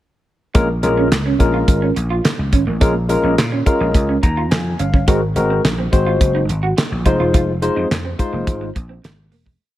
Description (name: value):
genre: early-eighties boogie funk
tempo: 106 BPM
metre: 4/4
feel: straight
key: Bb minor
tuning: A4 = 440 Hz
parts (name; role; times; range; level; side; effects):
- barky tine electric piano; accompaniment; 0.5-8.7 s; Ab3 to Bb5; -19 LUFS; left 2 dB; lush chorus
- electric guitar at the edge of break-up; riff; 0.5-9.6 s; Ab3 to Gb4; -24 LUFS; right 6 dB; lush chorus
- damped 70s drum kit; drums; 0.5-9.6 s; handclaps, hi-hat, kick drum, snare drum; -16 LUFS; equal; gated reverb
- vintage slap bass; bass; 0.6-9.5 s; E1 to Bb2; -20 LUFS; equal; none
room: small room ambience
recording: none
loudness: -14 LUFS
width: side -14 dB against mid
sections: 0.5-9.6 verse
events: tine electric piano fill 3.9-5.1; fade-out 7.3-9.6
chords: 0.5 Bbm7; 5.1 Ab9; 7.1 Fm7